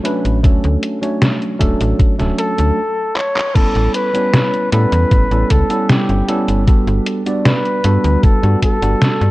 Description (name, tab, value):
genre	vaporwave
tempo	77 BPM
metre	4/4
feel	straight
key	unclear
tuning	A4 = 440 Hz
part	tine electric piano	accompaniment	0.0-9.3 s	F#3 to D5	-19 LUFS	right 1 dB	lush chorus, analog delay
part	detuned 8-bit digital drum machine	drums	0.0-9.3 s	cabasa, crash cymbal, handclaps, hi-hat, snare drum	-17 LUFS	equal	small room ambience
part	slap-like FM bass	bass	0.2-9.3 s	D1 to A2	-15 LUFS	equal	none
part	electronic kick drum	drums	0.4-8.8 s	none	-13 LUFS	equal	small room ambience
part	mellow flugelhorn	melody	2.4-9.3 s	G4 to C#5	-19 LUFS	equal	tape echo
room	light reverb, digital ambience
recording	cassette tape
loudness	-12 LUFS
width	side -18 dB against mid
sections	0.0-3.6 A section; 3.6-9.3 B section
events	stop 2.8-3.6; drum fill 3.2-3.6; band accent 3.4-3.8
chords	0.0 Dmaj7; 3.6 A9; 6.7 Gmaj9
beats	| 0.44 1.22 2.00 2.78 | 3.56 4.33 5.11 5.89 | 6.67 7.45 8.23 9.01